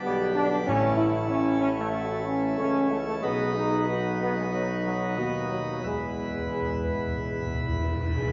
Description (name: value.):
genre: classical.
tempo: 93 BPM.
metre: 4/4.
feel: straight.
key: A lydian.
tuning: A4 = 439 Hz.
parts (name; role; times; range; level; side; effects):
dark trumpet section; melody; 0.0-8.2 s; D#4 to D#5; -39 LUFS; equal; none.
dark French horn section; sustained chords; 0.0-8.3 s; D#4 to B4; -35 LUFS; equal; none.
pipe organ, plenum; sustained chords; 0.0-8.3 s; B2 to B4; -35 LUFS; equal; none.
warm trombone section; sustained chords; 0.0-8.1 s; F#3 to E4; -31 LUFS; equal; none.
clear tuba; bass; 0.0-8.1 s; A1 to E2; -34 LUFS; equal; none.
timpani; percussion; 0.7-1.6, 5.8-8.3 s; E2 to A2; -35 LUFS; equal; none.
room: wet church reverb, RT60 2.8 s.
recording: heard from further back in the room, nothing above 7.6 kHz.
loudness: -27 LUFS.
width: mono.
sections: 0.0-8.3 A section.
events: timpani fill 5.8-8.3.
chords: 0.0 G; 0.7 A; 3.2 B; 5.8 E.